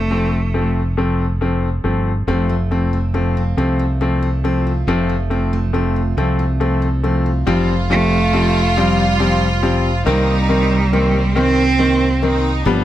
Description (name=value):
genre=six-eight pop ballad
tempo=46 BPM (dotted quarters)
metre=6/8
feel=straight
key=unclear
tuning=A4 = 441 Hz
part: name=rich cello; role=melody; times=0.0-0.7, 7.9-12.3 s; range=G3 to C4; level=-18 LUFS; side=right 3 dB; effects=digital delay
part: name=fingered electric bass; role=bass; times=0.0-12.8 s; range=F1 to C2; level=-18 LUFS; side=equal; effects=none
part: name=clear concert grand piano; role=accompaniment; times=0.1-12.8 s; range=Eb3 to C4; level=-19 LUFS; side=left 2 dB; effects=none
part: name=picked steel-string acoustic guitar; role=arpeggios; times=2.3-12.8 s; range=F3 to G4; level=-29 LUFS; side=right 6 dB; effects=none
part: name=clear studio violin section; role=second line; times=7.5-12.8 s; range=C4 to F4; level=-22 LUFS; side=right 1 dB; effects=none
room=light reverb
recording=none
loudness=-14 LUFS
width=side -13 dB against mid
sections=0.0-2.3 A section; 2.3-7.5 B section; 7.5-12.8 C section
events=none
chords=0.0 F; 7.5 Fsus2; 10.1 Cm7